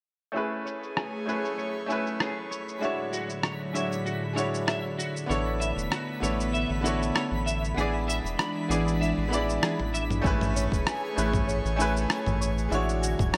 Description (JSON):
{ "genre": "sunset chillout", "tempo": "97 BPM", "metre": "4/4", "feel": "swing 54% on 16ths", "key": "A major", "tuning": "A4 = 440 Hz", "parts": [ { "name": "bright concert grand piano", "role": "accompaniment", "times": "0.3-13.4 s", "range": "G#3 to D5", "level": "-33 LUFS", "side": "equal", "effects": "vintage 12-bit sampler grit, low-pass filter, delay" }, { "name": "electric guitar at the edge of break-up", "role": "arpeggios", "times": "0.3-13.4 s", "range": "F#4 to B5", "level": "-38 LUFS", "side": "equal", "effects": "ensemble chorus, low-pass filter, delay" }, { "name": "airy breathy pad", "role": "sustained chords", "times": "0.4-13.4 s", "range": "A2 to C#5", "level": "-35 LUFS", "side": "equal", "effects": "chorus" }, { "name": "dusty soul sampler-style drum kit", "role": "drums", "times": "0.4-13.4 s", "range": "rim click, shaker, toms", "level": "-33 LUFS", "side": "equal", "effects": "overdrive, low-pass filter on perc, studio reverb, low-pass filter on snare, low-pass filter on toms" }, { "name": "twinkling granular texture", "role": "texture", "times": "1.2-13.4 s", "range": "G#5 to B5", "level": "-44 LUFS", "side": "equal", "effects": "built-in reverb" }, { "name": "round analog bass", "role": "bass", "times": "5.3-13.3 s", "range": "E1 to A1", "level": "-32 LUFS", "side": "equal", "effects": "none" }, { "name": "electronic kick drum", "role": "drums", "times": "10.2-13.3 s", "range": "none", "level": "-30 LUFS", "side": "equal", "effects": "studio reverb" } ], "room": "moderate lush hall reverb, RT60 1.9 s", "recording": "bright 1980s-style digital production", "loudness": "-28 LUFS", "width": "mono", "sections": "0.3-10.2 A section; 10.2-13.4 B section", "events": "filter sweep on clean electric guitar 0.3-10.2; drum fill 9.6-10.2", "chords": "0.3 Amaj9; 2.8 Dmaj9#11/A; 5.3 Bm11; 7.8 E7; 10.2 Amaj9; 12.7 Dmaj9#11", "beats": "| 0.35 0.97 1.59 2.21 | 2.83 3.44 4.06 4.68 | 5.30 5.92 6.54 7.16 | 7.77 8.39 9.01 9.63 | 10.25 10.87 11.48 12.10 | 12.72 13.34" }